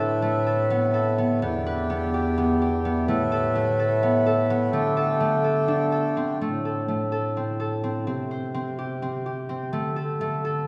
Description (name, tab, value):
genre	contemporary instrumental, chamber music in an uneven meter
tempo	253 BPM (eighths)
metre	7/8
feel	straight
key	A minor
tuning	A4 = 437 Hz
part	pedal harmonium	sustained chords	0.0-6.4 s	D3 to B4	-30 LUFS	equal	none
part	concert harp	arpeggios	0.0-10.7 s	A3 to C5	-29 LUFS	equal	none
part	mellow bass clarinet	bass	0.0-10.7 s	E2 to D3	-28 LUFS	equal	none
room	wet concert hall reverb, RT60 1.9 s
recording	heard from further back in the room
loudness	-24 LUFS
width	mono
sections	0.0-6.4 A section; 6.4-10.7 B section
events	none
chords	0.0 Asus2; 1.4 Em7; 3.1 Asus2; 4.7 Dsus4; 6.4 Am; 8.1 C5; 9.7 D5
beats	0.23 0.47 0.71 0.95 1.19 | 1.43 1.66 1.90 2.14 2.38 2.61 2.85 | 3.08 3.32 3.55 3.79 4.02 4.26 4.50 | 4.73 4.97 5.21 5.45 5.68 5.92 6.17 | 6.41 6.64 6.88 7.12 7.36 7.59 7.83 | 8.07 8.30 8.54 8.78 9.02 9.25 9.49 | 9.72 9.96 10.20 10.44 10.67